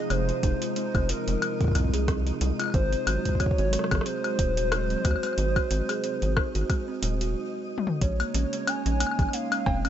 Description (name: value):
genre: IDM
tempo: 91 BPM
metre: 4/4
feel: swing 56% on 16ths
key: Bb minor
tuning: A4 = 439 Hz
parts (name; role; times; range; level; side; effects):
- warbly nostalgic lead; melody; 0.0-9.9 s; Bb4 to Ab5; -32 LUFS; equal; analog chorus, dub echo
- hollow soft pad; sustained chords; 0.0-9.9 s; C3 to Db5; -35 LUFS; left 2 dB; ensemble chorus
- buzzing kalimba; arpeggios; 0.0-9.9 s; Ab3 to Ab4; -33 LUFS; right 5 dB; digital delay
- twinkling granular texture; texture; 0.0-9.9 s; Eb4 to Eb5; -42 LUFS; right 1 dB; built-in reverb
- rubbery square bass; bass; 0.1-9.9 s; Eb1 to Eb2; -27 LUFS; equal; none
- electro analog drum machine; drums; 0.1-9.9 s; cowbell, hi-hat, rim click, toms, woodblock; -31 LUFS; left 4 dB; none
- electronic kick drum; drums; 0.4-9.8 s; none; -26 LUFS; equal; overdrive
room: little or no reverb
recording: nothing above 7.9 kHz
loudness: -24 LUFS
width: side -10 dB against mid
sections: 0.0-8.0 A section; 8.0-9.9 B section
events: stop 7.4-8.0; drum fill 7.7-8.0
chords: 0.0 Fm7; 2.7 Ab7; 8.0 Bbm11